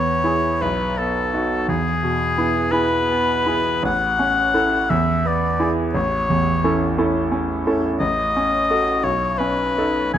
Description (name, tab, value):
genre	classical, romantic duo for oboe and grand piano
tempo	57 BPM (dotted quarters)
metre	6/8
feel	uneven beats, rubato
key	E major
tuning	A4 = 439 Hz
part	clear oboe	melody	0.0-10.2 s	G#4 to G#5	-20 LUFS	left 3 dB	none
part	bright concert grand piano	accompaniment	0.0-10.2 s	A1 to A4	-20 LUFS	right 1 dB	none
room	moderate recital hall reverb, RT60 1.3 s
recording	close, detailed microphones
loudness	-17 LUFS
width	side -10 dB against mid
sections	0.0-10.2 A section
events	none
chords	0.0 E; 0.6 B7; 1.7 E; 3.8 A; 4.9 E7; 5.9 A; 8.0 F#m/A; 9.0 B9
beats	0.61 | 1.69 2.72 | 3.85 4.91 | 5.94 6.97 | 8.00 9.03 | 10.13